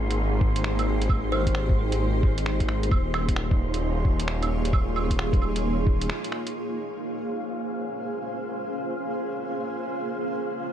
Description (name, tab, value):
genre	future garage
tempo	132 BPM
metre	4/4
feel	swing 64% on 16ths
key	Bb dorian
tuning	A4 = 440 Hz
part	granular cloud pad	sustained chords	0.0-10.7 s	Bb3 to Db5	-30 LUFS	right 1 dB	built-in reverb, sidechain pumping
part	swelling detuned saw bass	bass	0.0-6.1 s	Eb1 to Ab1	-26 LUFS	equal	sidechain pumping
part	wind-like tuned noise texture	texture	0.0-10.7 s	F5 to C6	-37 LUFS	equal	built-in reverb
part	lo-fi sampler-style drum kit	drums	0.1-6.5 s	claves, finger snaps, hi-hat	-32 LUFS	right 3 dB	tape echo
part	electronic kick drum	drums	0.4-6.0 s	none	-23 LUFS	equal	none
part	kalimba	melody	1.3-1.7 s	C5	-35 LUFS	left 3 dB	dub echo
room	light reverb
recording	echo-heavy mix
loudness	-24 LUFS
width	side -10 dB against mid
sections	0.0-6.6 A section; 6.6-10.7 B section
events	break 6.1-6.6; band accent 6.1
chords	0.0 Abmaj9; 2.9 Eb9sus4; 6.6 Bbm9